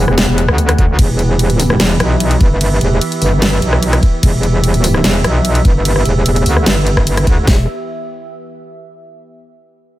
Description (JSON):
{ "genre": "heavy wobble dubstep", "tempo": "148 BPM", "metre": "4/4", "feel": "half-time", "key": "E minor", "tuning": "A4 = 439 Hz", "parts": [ { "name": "evolving wavetable pad", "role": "sustained chords", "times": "0.0-7.7 s", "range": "E3 to F#5", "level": "-20 LUFS", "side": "right 1 dB", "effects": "chorus, built-in reverb, sidechain pumping" }, { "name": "metallic wobble bass", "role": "bass", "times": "0.0-7.7 s", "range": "E1 to D2", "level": "-13 LUFS", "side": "equal", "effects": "chorus, overdrive" }, { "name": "dubstep drum kit", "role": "drums", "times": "0.1-7.4 s", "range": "crash cymbal, hi-hat, rim click, snare drum", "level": "-18 LUFS", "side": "equal", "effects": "none" }, { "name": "dubstep drum kit", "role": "drums", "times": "0.8-7.6 s", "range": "hi-hat, kick drum, snare drum", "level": "-11 LUFS", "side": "equal", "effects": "none" } ], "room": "digital ambience", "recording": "none", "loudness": "-10 LUFS", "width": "side -15 dB against mid", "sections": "0.0-7.5 A section; 7.5-9.1 B section", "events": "drop 0.0-7.5; band accent 7.2", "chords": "0.0 Em" }